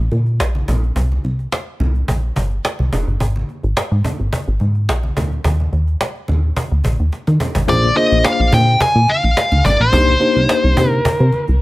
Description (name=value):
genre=early-eighties boogie funk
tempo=107 BPM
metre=4/4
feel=straight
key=unclear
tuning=A4 = 440 Hz
part: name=plucky analog bass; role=bass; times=0.0-11.6 s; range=F1 to Eb3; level=-16 LUFS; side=equal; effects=none
part: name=cajon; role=drums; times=0.1-11.5 s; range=none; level=-21 LUFS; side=equal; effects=none
part: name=congas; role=percussion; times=0.1-11.5 s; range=none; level=-27 LUFS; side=right 1 dB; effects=none
part: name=nasal lead guitar with a parked wah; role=melody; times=7.7-11.4 s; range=C5 to Ab5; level=-15 LUFS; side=equal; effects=overdrive
part: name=tine electric piano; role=accompaniment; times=7.7-11.0 s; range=Bb3 to C5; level=-18 LUFS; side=left 3 dB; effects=medium stereo tremolo
room=small room ambience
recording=none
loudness=-14 LUFS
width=side -18 dB against mid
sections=0.0-7.7 A section; 7.7-11.6 B section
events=drum fill 7.1-7.7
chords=0.0 N.C.; 1.0 C5; 3.2 N.C.; 5.4 Eb5; 7.7 Bb9; 9.9 Cm9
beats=0.40 | 0.96 1.52 2.08 2.64 | 3.20 3.76 4.32 4.88 | 5.45 6.00 6.57 7.13 | 7.69 8.25 8.81 9.37 | 9.93 10.49 11.05